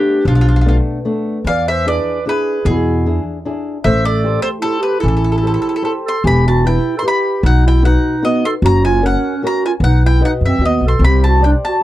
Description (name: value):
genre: italian folk, Italian serenade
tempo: 151 BPM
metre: 3/4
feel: straight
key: A minor, E minor from 6.2 s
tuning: A4 = 442 Hz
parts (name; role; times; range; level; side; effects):
- mandolin; melody; 0.0-11.8 s; F4 to C6; -19 LUFS; left 1 dB; none
- mellow clarinet; second line; 0.0-11.8 s; B3 to D5; -18 LUFS; right 3 dB; none
- flamenco guitar; accompaniment; 0.0-11.8 s; B2 to D#5; -22 LUFS; left 2 dB; none
- upright bass; bass; 0.3-11.5 s; E1 to F#2; -14 LUFS; equal; none
room: little or no reverb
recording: dry, close 1970s-style studio recording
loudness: -12 LUFS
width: side -14 dB against mid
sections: 0.0-6.2 A section; 6.2-11.8 B section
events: none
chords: 0.0 Bm7b5; 1.5 E7; 3.8 Am7; 6.2 Em; 7.4 B; 8.6 F#; 9.8 B; 11.0 Csus2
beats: | 0.26 0.65 1.05 | 1.46 1.86 2.26 | 2.66 3.06 3.45 | 3.85 4.24 4.64 | 5.03 5.43 5.83 | 6.23 6.63 7.03 | 7.43 7.83 8.23 | 8.62 9.02 9.41 | 9.81 10.21 10.61 | 11.01 11.42 11.82